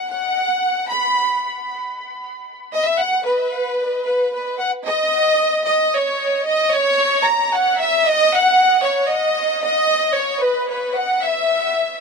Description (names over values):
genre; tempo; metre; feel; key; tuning
mexican folk; 75 BPM (dotted quarters); 6/8; rubato; B major; A4 = 441 Hz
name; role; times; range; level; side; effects
clear studio violin section; solo; 0.0-12.0 s; B4 to B5; -16 LUFS; equal; tape echo
room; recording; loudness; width
light reverb; dry, close 1970s-style studio recording; -16 LUFS; side -4 dB against mid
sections
0.0-4.9 A section; 4.9-12.0 B section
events
none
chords
none